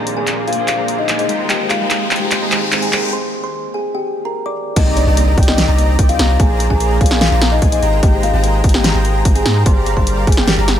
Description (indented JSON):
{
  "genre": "future bass",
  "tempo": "147 BPM",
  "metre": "4/4",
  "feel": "half-time",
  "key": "C minor",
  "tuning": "A4 = 438 Hz",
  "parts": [
    { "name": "kalimba", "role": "melody", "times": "0.0-10.7 s", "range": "D4 to D6", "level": "-20 LUFS", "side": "left 3 dB", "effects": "sidechain pumping, digital delay" },
    { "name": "clean electric guitar", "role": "accompaniment", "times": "0.0-3.1 s", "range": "Bb2 to C5", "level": "-26 LUFS", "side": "right 3 dB", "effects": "wide subtle chorus, sidechain pumping, ping-pong delay" },
    { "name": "shimmering ambient pad", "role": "sustained chords", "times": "0.0-3.1 s", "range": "Eb3 to G4", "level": "-28 LUFS", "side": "equal", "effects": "chorus, built-in reverb, sidechain pumping" },
    { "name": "supersaw chords", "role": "riff", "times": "0.0-10.8 s", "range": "G3 to Bb5", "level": "-23 LUFS", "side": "right 1 dB", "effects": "wide subtle chorus, sidechain pumping, low-pass filter" },
    { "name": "long sustained 808-style bass", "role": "bass", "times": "0.0-10.8 s", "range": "G1 to Ab2", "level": "-17 LUFS", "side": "equal", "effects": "tube saturation, sidechain pumping, high-pass filter" },
    { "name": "riser and impact", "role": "sound effects", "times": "0.4-6.4 s", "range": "none", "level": "-26 LUFS", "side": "left 1 dB", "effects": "none" },
    { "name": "big-room dance drum kit", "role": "drums", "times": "0.1-10.8 s", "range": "crash cymbal, handclaps, hi-hat, snare drum", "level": "-18 LUFS", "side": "equal", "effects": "none" },
    { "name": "airy dreamy lead", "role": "arpeggios", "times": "4.8-10.8 s", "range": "G5 to Bb5", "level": "-27 LUFS", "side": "right 1 dB", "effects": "chorus, sidechain pumping, ping-pong delay" },
    { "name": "wide unison pluck", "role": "arpeggios", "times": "4.8-10.7 s", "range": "Bb3 to C5", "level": "-29 LUFS", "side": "right 5 dB", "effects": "none" },
    { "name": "electronic kick drum", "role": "drums", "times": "4.8-10.4 s", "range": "none", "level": "-13 LUFS", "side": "equal", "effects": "none" }
  ],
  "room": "light reverb",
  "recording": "none",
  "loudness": "-12 LUFS",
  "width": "side -10 dB against mid",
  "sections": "0.0-4.8 A section; 4.8-10.8 B section",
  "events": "build-up 0.0-4.8; drum fill 0.0-3.1; riser 0.4-3.1; break 3.1-4.8; drop 4.8-10.8; impact 4.8-6.4",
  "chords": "0.0 Bb7; 1.3 Abmaj9; 3.1 G5; 4.8 Cm7; 6.4 Bb7; 7.8 Abmaj9; 9.7 Gm7"
}